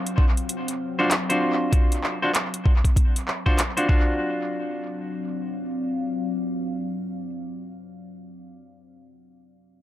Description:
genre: glitch hop.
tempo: 97 BPM.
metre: 4/4.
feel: swing 62% on 16ths.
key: unclear.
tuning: A4 = 440 Hz.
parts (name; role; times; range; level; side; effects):
deep dark ambient pad; texture; 0.0-7.4 s; F#3 to E#5; -31 LUFS; left 1 dB; chorus, built-in reverb, sidechain pumping.
drum and bass drum kit; drums; 0.1-3.9 s; handclaps, hi-hat; -28 LUFS; equal; tape echo.
electronic kick drum; drums; 0.2-4.0 s; none; -19 LUFS; equal; none.
semi-hollow electric guitar; stabs; 1.0-7.3 s; D4 to C5; -26 LUFS; equal; sidechain pumping, tape echo.
room: light reverb.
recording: echo-heavy mix.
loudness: -22 LUFS.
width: side -13 dB against mid.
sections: 0.0-4.2 A section; 4.2-6.7 B section.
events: fade-out on ambient pad 0.0-4.2.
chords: 0.0 D7#9.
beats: 0.49 1.11 | 1.73 2.34 2.96 3.58 | 4.20 4.82 5.44 6.05.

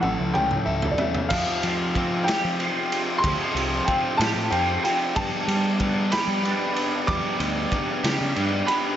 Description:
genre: indie rock.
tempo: 62 BPM (dotted quarters).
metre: 6/8.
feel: straight.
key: unclear.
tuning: A4 = 441 Hz.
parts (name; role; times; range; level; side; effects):
dark upright piano; melody; 0.0-9.0 s; D5 to D6; -27 LUFS; equal; none.
crunchy overdriven guitar; riff; 0.0-9.0 s; E3 to A4; -28 LUFS; left 6 dB; none.
crunchy overdriven guitar; riff; 0.0-9.0 s; A2 to G4; -31 LUFS; right 6 dB; ensemble chorus.
growling picked electric bass; bass; 0.0-8.6 s; A1 to G3; -27 LUFS; equal; overdrive.
raw garage drum kit; drums; 0.0-8.8 s; crash cymbal, kick drum, ride cymbal, snare drum, toms; -27 LUFS; right 1 dB; none.
ethereal airy pad; sustained chords; 2.5-9.0 s; G4 to C6; -38 LUFS; equal; none.
room: moderate scoring stage reverb, RT60 1.9 s, studio ambience.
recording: big arena sound, nothing above 7.8 kHz.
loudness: -21 LUFS.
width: side -10 dB against mid.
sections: 0.0-1.3 A section; 1.3-9.0 B section.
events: drum fill 0.0-1.3.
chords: 0.0 A; 1.3 Fsus2; 5.2 G.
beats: 0.35 | 1.32 2.28 | 3.24 4.21 | 5.17 6.12 | 7.08 8.04.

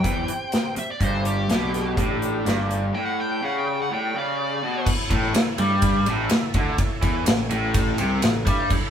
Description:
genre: blues rock power trio and southern rock.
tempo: 125 BPM.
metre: 4/4.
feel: straight.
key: A mixolydian.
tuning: A4 = 440 Hz.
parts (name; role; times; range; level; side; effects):
dark smooth lead guitar; melody; 0.0-4.9 s; G4 to G5; -29 LUFS; equal; overdrive.
overdriven tonewheel organ; sustained chords; 0.0-8.9 s; C4 to A5; -36 LUFS; right 3 dB; chorus vibrato, slow rotary speaker.
raw garage guitar; riff; 0.0-8.7 s; G2 to G3; -24 LUFS; equal; overdrive.
fuzz picked electric bass; bass; 0.0-8.7 s; G1 to G2; -27 LUFS; equal; overdrive.
big rock drum kit; drums; 0.0-8.8 s; crash cymbal, hi-hat, kick drum, ride cymbal, snare drum; -23 LUFS; equal; none.
room: moderate studio reverb, RT60 0.9 s.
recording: band playing live in one room.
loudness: -20 LUFS.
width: side -8 dB against mid.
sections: 0.0-4.9 A section; 4.9-8.9 B section.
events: break 2.9-4.9; tonewheel organ fill 7.3-8.7.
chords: 0.0 C5; 1.0 G5; 4.9 A.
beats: 0.05 0.53 | 1.01 1.50 1.98 2.46 | 2.94 3.42 3.90 4.38 | 4.87 5.35 5.83 6.31 | 6.79 7.27 7.75 8.23 | 8.71.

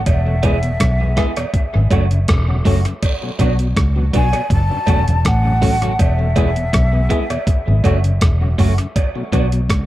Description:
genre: roots reggae.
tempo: 81 BPM.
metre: 4/4.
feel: straight.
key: F# minor.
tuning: A4 = 440 Hz.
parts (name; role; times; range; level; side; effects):
breathy mellow jazz flute; melody; 0.0-8.2 s; E5 to A5; -24 LUFS; left 1 dB; dub echo.
vintage muted fingered electric bass; bass; 0.0-9.9 s; E1 to C#2; -16 LUFS; equal; none.
dusty soul sampler-style drum kit; drums; 0.1-9.9 s; hi-hat, kick drum, rim click; -18 LUFS; equal; overdrive, dub echo.
cowbell and jawbone-type rattle; percussion; 0.1-9.5 s; none; -28 LUFS; right 6 dB; none.
mellow tonewheel organ; accompaniment; 0.3-9.6 s; E2 to F#4; -26 LUFS; left 2 dB; slow rotary speaker, dub echo.
electric guitar at the edge of break-up; accompaniment; 0.4-9.5 s; F#3 to G#4; -25 LUFS; right 2 dB; dub echo.
room: little or no reverb.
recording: echo-heavy mix.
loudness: -14 LUFS.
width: side -15 dB against mid.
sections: 0.0-9.9 A section.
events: none.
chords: 0.1 E; 1.5 F#m; 3.0 Bm; 4.5 F#m; 6.0 E; 7.5 F#m; 9.0 Bm.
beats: | 0.06 0.80 1.54 2.28 | 3.02 3.77 4.51 5.25 | 5.99 6.73 7.47 8.21 | 8.95 9.69.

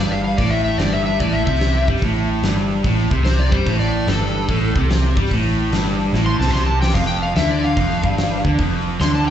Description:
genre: blues rock power trio and southern rock.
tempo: 146 BPM.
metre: 4/4.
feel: swing 65% on 8ths.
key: A minor.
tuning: A4 = 439 Hz.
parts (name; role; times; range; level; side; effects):
overdriven slide guitar; melody; 0.0-9.3 s; A4 to C6; -24 LUFS; left 2 dB; slapback echo, analog delay.
overdriven electric guitar; riff; 0.0-9.3 s; F2 to G3; -20 LUFS; equal; slapback echo.
vintage muted fingered electric bass; bass; 0.0-9.3 s; F1 to G2; -20 LUFS; equal; none.
big rock drum kit; drums; 0.4-9.1 s; hi-hat, kick drum, snare drum, splash cymbal; -23 LUFS; equal; none.
room: light reverb.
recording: live gig heard through the venue's PA, club reverb, nothing above 8.0 kHz.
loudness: -16 LUFS.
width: side -10 dB against mid.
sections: 0.0-9.3 A section.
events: electric slide guitar solo 0.0-9.3; drum fill 6.1-6.9.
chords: 0.4 Am; 6.9 Fsus2.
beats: | 0.39 0.80 1.21 1.62 | 2.03 2.44 2.85 3.26 | 3.67 4.08 4.49 4.90 | 5.31 5.72 6.13 6.54 | 6.95 7.36 7.77 8.18 | 8.59 9.01.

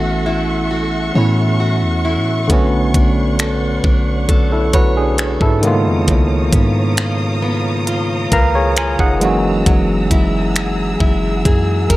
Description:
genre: contemporary R&B.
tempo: 67 BPM.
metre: 4/4.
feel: straight.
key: unclear.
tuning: A4 = 436 Hz.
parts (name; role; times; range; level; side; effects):
barky tine electric piano; accompaniment; 0.0-12.0 s; D3 to A#5; -18 LUFS; right 1 dB; overdrive, medium stereo tremolo.
warm studio string section; sustained chords; 0.0-12.0 s; G#4 to E6; -25 LUFS; equal; none.
picked plugged-in steel-string acoustic guitar; arpeggios; 0.0-12.0 s; C#3 to C#5; -22 LUFS; equal; tape echo.
warm 808-style bass; bass; 0.0-12.0 s; F#1 to A2; -19 LUFS; equal; none.
trap drum kit; drums; 2.5-12.0 s; finger snaps, hi-hat, kick drum; -15 LUFS; equal; none.
room: digital ambience.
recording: dry, gritty hardware recording.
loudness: -13 LUFS.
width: side -17 dB against mid.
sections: 0.0-12.0 A section.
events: tine electric piano fill 7.9-9.7.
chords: 0.0 A6; 2.5 Bm9; 5.6 C#13; 9.2 F#9.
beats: 0.71 1.60 | 2.50 3.39 4.29 5.18 | 6.08 6.98 7.87 8.77 | 9.66 10.56 11.45.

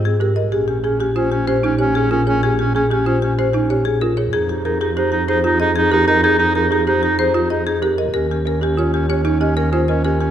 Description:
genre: classical, minimalist pattern music.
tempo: 189 BPM.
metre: 6/4.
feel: straight.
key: F minor.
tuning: A4 = 439 Hz.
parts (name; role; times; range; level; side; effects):
marimba with medium hard mallets; melody; 0.0-10.3 s; G4 to Eb5; -22 LUFS; left 7 dB; none.
folk marimba with medium hard mallets; arpeggios; 0.0-10.3 s; Eb4 to Bb4; -21 LUFS; right 4 dB; none.
warm double bass; bass; 0.0-10.3 s; Bb1 to Ab2; -20 LUFS; right 1 dB; none.
clear clarinet; second line; 0.1-10.3 s; C4 to Eb4; -20 LUFS; right 1 dB; none.
room: moderate scoring stage reverb, RT60 1.4 s.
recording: none.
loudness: -15 LUFS.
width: side -10 dB against mid.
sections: 0.0-10.3 A section.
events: none.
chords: 0.0 Abmaj9; 0.5 Bbm9; 4.3 Fm11; 8.1 Eb9.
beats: 0.20 | 0.52 0.84 1.16 1.48 1.79 2.11 | 2.43 2.75 3.06 3.38 3.70 4.01 | 4.33 4.65 4.97 5.28 5.60 5.92 | 6.24 6.55 6.87 7.19 7.51 7.82 | 8.14 8.46 8.78 9.09 9.41 9.73 | 10.05.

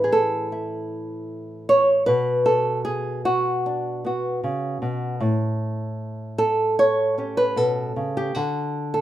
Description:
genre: folk, solo fingerstyle acoustic guitar.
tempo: 76 BPM.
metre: 4/4.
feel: straight.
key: A major.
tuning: A4 = 439 Hz.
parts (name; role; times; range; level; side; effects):
nylon-string guitar; solo; 0.0-9.0 s; A2 to C#5; -20 LUFS; equal; none.
room: light reverb.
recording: minimal, uncompressed stereo recording.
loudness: -20 LUFS.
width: side -13 dB against mid.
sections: 0.0-9.0 A section.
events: none.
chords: 0.0 A; 2.1 Bm; 5.2 A7; 8.4 D.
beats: 0.51 1.30 | 2.08 2.87 3.65 4.43 | 5.21 6.00 6.78 7.57 | 8.36.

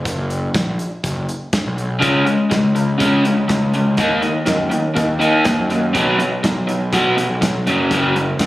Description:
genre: indie rock.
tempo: 122 BPM.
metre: 4/4.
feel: straight.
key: unclear.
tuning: A4 = 441 Hz.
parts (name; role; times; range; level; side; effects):
fuzz picked electric bass; bass; 0.0-8.5 s; Gb1 to Db3; -22 LUFS; equal; overdrive.
loose indie drum kit; drums; 0.1-8.5 s; hi-hat, kick drum, snare drum; -23 LUFS; equal; none.
crunchy overdriven guitar; riff; 2.0-8.5 s; Gb2 to Eb4; -15 LUFS; equal; none.
room: light reverb.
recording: recorded on a phone in the room, studio reverb, compression.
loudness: -15 LUFS.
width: side -16 dB against mid.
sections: 0.0-8.5 A section.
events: none.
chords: 0.0 Gb; 2.0 Db5; 4.0 Ebm; 5.9 Cb5; 7.7 Gb5.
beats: | 0.05 0.54 1.03 1.52 | 2.02 2.51 3.00 3.49 | 3.98 4.47 4.96 5.45 | 5.94 6.43 6.92 7.41 | 7.90 8.39.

